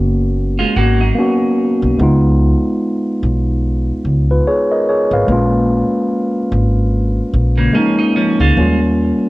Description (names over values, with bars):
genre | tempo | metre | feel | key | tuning
hip hop | 73 BPM | 4/4 | swing 58% on 16ths | unclear | A4 = 445 Hz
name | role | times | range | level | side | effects
mellow tine electric piano | accompaniment | 0.0-9.3 s | E#3 to E#5 | -15 LUFS | equal | low-pass filter, plate reverb
upright bass | bass | 0.0-9.1 s | F#1 to D#2 | -15 LUFS | equal | none
clean electric guitar | second line | 0.6-2.0, 7.6-8.8 s | C#3 to F#4 | -18 LUFS | right 2 dB | spring reverb, low-pass filter, tape echo
room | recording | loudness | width
moderate studio reverb, RT60 0.5 s | cassette tape | -12 LUFS | side -19 dB against mid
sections
0.0-9.3 A section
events
none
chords
0.0 G#m11; 2.0 C#9; 8.6 D#9